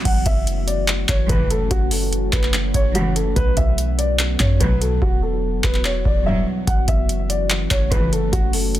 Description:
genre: hip hop, trap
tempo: 145 BPM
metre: 4/4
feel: half-time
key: F# minor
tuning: A4 = 442 Hz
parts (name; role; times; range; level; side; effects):
- deep dark ambient pad; sustained chords; 0.0-8.8 s; D3 to F#4; -27 LUFS; equal; chorus, built-in reverb
- warm studio string section; stabs; 0.0-8.3 s; B1 to F#3; -26 LUFS; equal; none
- dark concert grand piano; melody; 0.1-8.8 s; F#4 to F#5; -25 LUFS; equal; digital delay
- clean 808-style bass; bass; 0.1-8.8 s; E1 to F#2; -22 LUFS; equal; none
- booming analog drum machine; drums; 0.1-8.8 s; crash cymbal, handclaps, hi-hat, kick drum; -19 LUFS; equal; overdrive
room: little or no reverb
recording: dense, heavily limited modern master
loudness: -17 LUFS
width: side -13 dB against mid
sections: 0.1-8.8 A section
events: hi-hats muted 5.0-6.7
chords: 0.1 F#m7; 3.4 Bm; 5.0 Emadd9; 6.7 F#m7

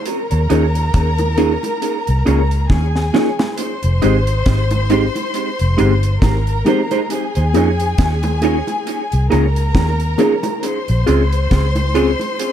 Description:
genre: lovers rock reggae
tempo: 68 BPM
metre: 4/4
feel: swing 57% on 16ths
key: F minor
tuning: A4 = 440 Hz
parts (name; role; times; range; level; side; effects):
- warm studio violin section; second line; 0.0-12.5 s; Ab4 to C6; -23 LUFS; left 2 dB; none
- deep reggae drum kit; drums; 0.1-12.5 s; hi-hat, kick drum, rim click, snare drum; -20 LUFS; equal; none
- vintage muted fingered electric bass; bass; 0.3-12.1 s; F1 to F2; -16 LUFS; equal; none
- mellow tine electric piano; accompaniment; 0.5-12.1 s; Ab3 to Ab4; -21 LUFS; left 2 dB; medium stereo tremolo, tape echo
- electric guitar through a small old amp; stabs; 0.5-12.1 s; Eb4 to Db5; -21 LUFS; right 6 dB; phaser, tape echo
- bongos; percussion; 1.2-12.4 s; none; -28 LUFS; right 3 dB; none
room: light reverb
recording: dark, warm production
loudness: -14 LUFS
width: side -10 dB against mid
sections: 0.0-3.6 A section; 3.6-12.5 A section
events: drum fill 2.7-3.6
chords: 0.1 Eb7sus4; 3.6 Fm7 (rootless); 7.1 Eb7sus4; 10.6 Bbm7 (rootless)

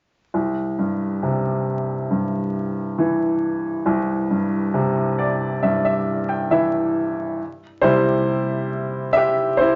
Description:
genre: pop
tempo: 68 BPM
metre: 4/4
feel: straight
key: C major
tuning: A4 = 441 Hz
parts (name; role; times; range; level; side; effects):
- bright upright piano; solo; 0.3-9.8 s; C2 to G5; -21 LUFS; equal; none
room: wet club reverb, RT60 0.7 s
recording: vinyl crackle, nothing above 7.5 kHz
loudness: -22 LUFS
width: mono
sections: 0.3-7.4 A section; 7.4-9.8 B section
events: upright piano fill 4.8-7.4; upright piano solo 7.4-9.8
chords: 0.3 C

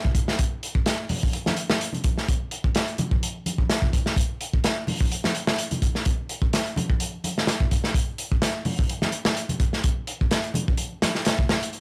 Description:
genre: breakbeat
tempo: 127 BPM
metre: 4/4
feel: swing 55% on 16ths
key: none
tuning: none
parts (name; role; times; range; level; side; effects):
- crunchy breakbeat drum kit; drums; 0.0-11.8 s; hi-hat, kick drum, snare drum; -25 LUFS; equal; none
- congas; percussion; 0.0-11.5 s; none; -34 LUFS; equal; none
room: little or no reverb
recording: vinyl crackle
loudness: -25 LUFS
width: mono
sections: 0.0-11.8 A section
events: none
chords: none

